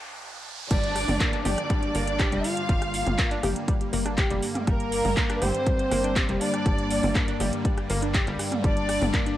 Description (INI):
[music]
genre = melodic techno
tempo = 121 BPM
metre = 4/4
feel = straight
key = G minor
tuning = A4 = 441 Hz
[part]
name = riser, noise sweep and downlifter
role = sound effects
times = 0.0-4.7 s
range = none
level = -39 LUFS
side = right 1 dB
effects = none
[part]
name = wide unison lead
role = melody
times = 0.7-9.3 s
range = Bb3 to F4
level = -32 LUFS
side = equal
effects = sidechain pumping, tape echo
[part]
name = warm studio violin section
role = second line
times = 0.7-9.3 s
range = Bb4 to F5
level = -30 LUFS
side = right 1 dB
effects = sidechain pumping, cassette tape, tape echo
[part]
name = evolving wavetable pad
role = sustained chords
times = 1.6-9.4 s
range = D3 to D4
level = -34 LUFS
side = equal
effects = ensemble chorus, built-in reverb, sidechain pumping, cassette tape
[part]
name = analog pluck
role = arpeggios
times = 0.7-9.3 s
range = G3 to G4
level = -32 LUFS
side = left 1 dB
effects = chorus, sidechain pumping, cassette tape, tape echo
[part]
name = tight sequencer bass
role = bass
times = 0.7-9.1 s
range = F1 to G1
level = -30 LUFS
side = equal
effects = tube saturation, sidechain pumping, high-pass filter
[part]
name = bowed-like drone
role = drone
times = 1.7-9.4 s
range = G2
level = -39 LUFS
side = left 1 dB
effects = none
[part]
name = electronic kick drum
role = drums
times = 0.7-9.2 s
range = none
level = -25 LUFS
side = equal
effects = cassette tape
[part]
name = house drum kit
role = drums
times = 0.7-9.4 s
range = crash cymbal, handclaps, hi-hat, rim click, toms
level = -30 LUFS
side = equal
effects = cassette tape
[sound]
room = light reverb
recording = home recording on cassette, high-pass filter, faint mains hum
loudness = -22 LUFS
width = side -13 dB against mid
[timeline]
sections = 0.7-9.4 A section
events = break 0.0-0.7; riser 0.0-0.7; noise sweep 0.0-0.7; drop 0.7-9.4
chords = 0.0 N.C.; 0.7 Gm